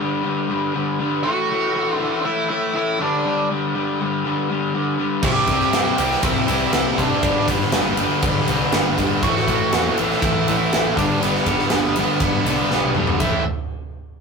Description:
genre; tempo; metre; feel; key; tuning
quiet-loud alternative rock; 120 BPM; 4/4; straight; unclear; A4 = 440 Hz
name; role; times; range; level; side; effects
overdriven electric guitar; riff; 0.0-13.4 s; G2 to C4; -22 LUFS; left 3 dB; none
octave-fuzz lead guitar; melody; 1.2-13.4 s; B3 to G5; -23 LUFS; right 3 dB; distortion
crunchy overdriven guitar; riff; 5.2-13.4 s; G2 to C4; -25 LUFS; right 2 dB; none
distorted electric guitar; riff; 5.2-13.4 s; G2 to E4; -28 LUFS; right 6 dB; overdrive
fuzz picked electric bass; bass; 5.2-13.4 s; G1 to C3; -28 LUFS; left 1 dB; overdrive
big rock drum kit; drums; 5.2-13.3 s; crash cymbal, kick drum, ride cymbal, snare drum, toms; -22 LUFS; equal; none
room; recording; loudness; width
moderate studio reverb, RT60 0.5 s; rough rehearsal-room recording, tube saturation; -17 LUFS; side -5 dB against mid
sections
0.0-13.2 A section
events
drum fill 12.7-13.2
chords
0.0 G5; 1.2 A5; 3.0 G5; 5.2 C; 7.2 G; 9.2 Am; 11.0 G; 13.2 Am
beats
0.24 0.74 | 1.24 1.74 2.24 2.74 | 3.24 3.74 4.24 4.74 | 5.23 5.73 6.23 6.73 | 7.23 7.73 8.23 8.73 | 9.22 9.72 10.22 10.72 | 11.22 11.71 12.21 12.71 | 13.21

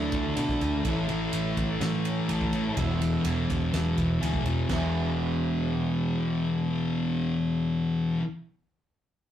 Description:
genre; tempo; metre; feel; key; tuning
rock, shoegaze and dream pop; 125 BPM; 4/4; straight; E mixolydian; A4 = 440 Hz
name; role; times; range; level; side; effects
electric guitar through a small old amp; arpeggios; 0.0-8.2 s; E3 to A4; -39 LUFS; right 1 dB; none
overdriven semi-hollow guitar; riff; 0.0-8.2 s; E2 to E4; -33 LUFS; right 4 dB; none
thick fuzz guitar; riff; 0.0-8.2 s; E2 to D4; -27 LUFS; left 2 dB; distortion
vintage muted picked electric bass; bass; 0.0-7.7 s; E1 to B2; -32 LUFS; equal; none
loose indie drum kit; drums; 0.1-4.8 s; crash cymbal, kick drum, ride cymbal, snare drum; -34 LUFS; right 1 dB; none
room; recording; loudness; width
moderate studio reverb, RT60 0.6 s; rough rehearsal-room recording, tube saturation; -25 LUFS; side -11 dB against mid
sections
0.0-4.7 A section; 4.7-8.5 B section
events
none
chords
0.0 Dsus2; 0.8 A; 2.8 E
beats
0.36 | 0.84 1.33 1.81 2.29 | 2.77 3.25 3.73 4.21 | 4.70 5.18 5.66 6.14 | 6.62 7.10 7.58 8.06

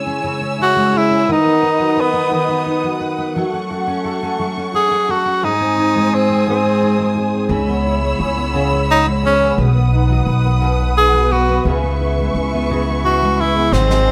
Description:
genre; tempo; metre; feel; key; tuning
six-eight pop ballad; 58 BPM (dotted quarters); 6/8; straight; C# minor; A4 = 442 Hz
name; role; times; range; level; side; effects
fingerpicked steel-string acoustic guitar; accompaniment; 0.0-14.1 s; G#2 to B4; -22 LUFS; equal; double-tracked
warm symphonic string section; sustained chords; 0.0-14.1 s; A3 to E6; -24 LUFS; equal; none
bright tenor saxophone; melody; 0.6-14.1 s; B3 to G#4; -18 LUFS; equal; none
upright bass; bass; 7.5-14.1 s; G#1 to C#2; -20 LUFS; equal; none
snare drum; drums; 13.7-14.1 s; none; -26 LUFS; equal; none
room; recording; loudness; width
light reverb, studio reverb; rough home demo mix; -16 LUFS; mono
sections
0.0-14.1 A section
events
drum fill 13.7-14.1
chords
0.0 C#m; 1.3 B/D#; 3.4 F#m; 5.4 G#; 7.5 C#m7; 9.6 B; 11.7 C#m7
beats
0.25 | 1.29 2.32 | 3.36 4.40 | 5.43 6.47 | 7.51 8.55 | 9.58 10.62 | 11.66 12.70 | 13.73

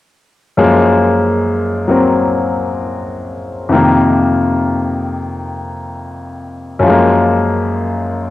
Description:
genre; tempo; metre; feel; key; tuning
solo jazz; 76 BPM; 4/4; swing 67% on 8ths; unclear; A4 = 441 Hz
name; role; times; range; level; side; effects
bright concert grand piano; solo; 0.6-8.3 s; F2 to C4; -12 LUFS; left 2 dB; cassette tape
room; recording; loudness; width
moderate lush hall reverb, RT60 2.3 s; home recording on cassette; -11 LUFS; side -15 dB against mid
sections
0.6-8.3 A section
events
none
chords
0.6 Gbmaj9; 3.7 F7sus4; 6.9 Gbmaj9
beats
| 0.57 1.36 2.14 2.93 | 3.71 4.50 5.28 6.07 | 6.85 7.64

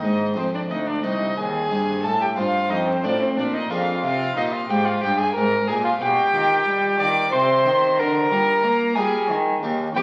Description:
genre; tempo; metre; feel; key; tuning
classical, baroque-style sonata movement with continuo; 91 BPM; 3/4; straight; unclear; A4 = 444 Hz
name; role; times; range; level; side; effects
warm violin; melody; 0.0-10.0 s; C4 to D5; -25 LUFS; equal; none
warm violin; second line; 0.0-10.0 s; C5 to D6; -26 LUFS; equal; none
harpsichord; accompaniment; 0.0-10.0 s; C2 to Ab4; -30 LUFS; equal; none
rich cello; bass; 0.0-10.0 s; C2 to Bb3; -28 LUFS; equal; none
room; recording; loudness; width
wet recital hall reverb, RT60 1.5 s; very old 78 rpm record, vinyl crackle; -21 LUFS; mono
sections
0.0-10.0 A section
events
none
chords
0.0 Ab; 2.0 F7; 3.4 Bb7; 4.0 Cm; 6.0 G7/B; 7.3 Cm; 8.0 Bb/D; 9.3 Eb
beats
| 0.03 0.70 1.37 | 2.04 2.70 3.37 | 4.03 4.69 5.35 | 6.01 6.67 7.33 | 7.98 8.64 9.30 | 9.96

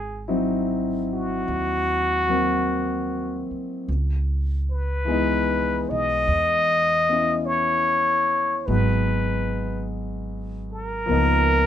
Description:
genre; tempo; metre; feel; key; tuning
jazz ballad; 50 BPM; 4/4; swing 68% on 8ths; G# minor; A4 = 440 Hz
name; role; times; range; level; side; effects
trumpet with plunger mute; melody; 0.0-11.7 s; F#4 to D#5; -22 LUFS; left 1 dB; none
upright bass; bass; 0.0-11.7 s; G#1 to E2; -27 LUFS; right 1 dB; none
warm concert grand piano; accompaniment; 0.3-11.7 s; E3 to E4; -26 LUFS; left 2 dB; none
room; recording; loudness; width
light reverb; minimal, uncompressed stereo recording; -20 LUFS; side -10 dB against mid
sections
0.0-11.7 A section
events
none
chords
0.0 G#7b13; 3.9 C#m9; 8.7 G#m7; 11.1 C#13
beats
0.27 1.47 2.67 | 3.88 5.08 6.28 7.49 | 8.69 9.90 11.10

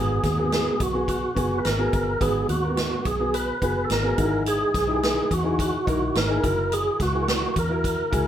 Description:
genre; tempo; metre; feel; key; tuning
uptempo 1960s-style soul; 107 BPM; 4/4; straight; G# minor; A4 = 440 Hz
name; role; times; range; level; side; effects
percussive tonewheel organ; melody; 0.0-8.3 s; F#4 to B4; -25 LUFS; right 1 dB; overdrive, chorus vibrato, fast rotary speaker
clear upright piano; accompaniment; 0.0-8.3 s; G#2 to B4; -27 LUFS; left 1 dB; none
vintage muted fingered electric bass; bass; 0.0-8.3 s; F#1 to E2; -28 LUFS; equal; none
swinging big-band drum kit; drums; 0.2-8.3 s; hi-hat, kick drum, snare drum; -28 LUFS; right 1 dB; none
room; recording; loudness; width
moderate studio reverb, RT60 0.6 s; band playing live in one room; -21 LUFS; side -10 dB against mid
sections
0.0-8.3 A section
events
none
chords
0.0 G#m7; 4.2 Emaj7/G#; 6.4 F#7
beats
0.52 1.08 1.65 | 2.21 2.77 3.34 3.90 | 4.46 5.03 5.59 6.15 | 6.72 7.28 7.84

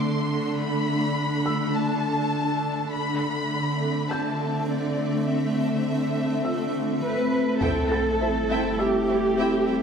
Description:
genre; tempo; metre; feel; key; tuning
cinematic, hybrid orchestral and electronic film score; 102 BPM; 4/4; straight; unclear; A4 = 440 Hz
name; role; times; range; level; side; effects
warm studio violin section; melody; 0.0-7.0 s; D5 to C6; -30 LUFS; left 3 dB; none
granular cloud pad; sustained chords; 0.0-9.8 s; G3 to E5; -27 LUFS; left 2 dB; built-in reverb
dark symphonic cello section; bass; 0.0-9.8 s; D3 to B4; -26 LUFS; right 3 dB; none
felt-muted upright piano; texture; 0.0-9.8 s; F4 to A6; -36 LUFS; equal; tape echo
warm symphonic violin section; second line; 7.6-9.8 s; C5 to G5; -32 LUFS; left 3 dB; none
dark studio viola section; accompaniment; 7.6-9.8 s; C4 to E4; -31 LUFS; right 2 dB; none
mellow French horn section; sustained chords; 7.6-9.8 s; A3; -30 LUFS; left 4 dB; none
taiko ensemble; drums; 7.6-8.8 s; none; -33 LUFS; equal; none
sub drop; sound effects; 7.6-9.8 s; none; -32 LUFS; equal; none
room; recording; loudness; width
wet scoring stage reverb, RT60 1.9 s; none; -22 LUFS; side -6 dB against mid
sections
0.0-7.6 A section; 7.6-9.8 B section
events
impact 7.6-9.8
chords
0.0 Dm; 2.9 Am/D; 7.6 Am7/G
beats
| 0.56 1.15 1.74 2.33 | 2.91 3.50 4.09 4.68 | 5.27 5.86 6.44 7.03 | 7.62 8.21 8.80 9.38

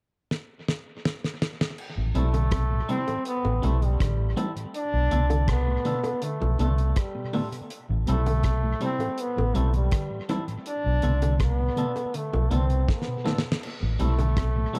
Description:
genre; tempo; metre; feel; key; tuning
roots reggae; 81 BPM; 4/4; straight; A minor; A4 = 440 Hz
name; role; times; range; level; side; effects
damped 70s drum kit; drums; 0.3-14.8 s; crash cymbal, hi-hat, kick drum, rim click, snare drum; -32 LUFS; equal; dub echo
mellow tonewheel organ; accompaniment; 2.0-14.8 s; A2 to C4; -36 LUFS; equal; slow rotary speaker, dub echo
vintage muted fingered electric bass; bass; 2.0-14.6 s; A1 to C2; -26 LUFS; equal; none
clean electric guitar; accompaniment; 2.1-14.8 s; G3 to A4; -39 LUFS; equal; dub echo
electric guitar at the edge of break-up; arpeggios; 2.1-14.8 s; A2 to F3; -37 LUFS; equal; none
bright trombone; melody; 2.2-14.8 s; G3 to D4; -33 LUFS; equal; dub echo
bongos; percussion; 2.3-14.4 s; none; -39 LUFS; equal; none
room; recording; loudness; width
light reverb; dark, warm production; -26 LUFS; mono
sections
0.0-1.8 A section; 1.8-14.8 B section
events
drum fill 0.3-1.8, 12.9-13.6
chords
0.0 N.C.; 1.8 Am7; 4.7 Bm7b5; 7.7 Am7; 10.7 Bm7b5; 13.6 Am7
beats
0.30 1.04 | 1.78 2.52 3.26 4.00 | 4.74 5.48 6.22 6.96 | 7.70 8.44 9.18 9.92 | 10.66 11.40 12.14 12.88 | 13.62 14.36

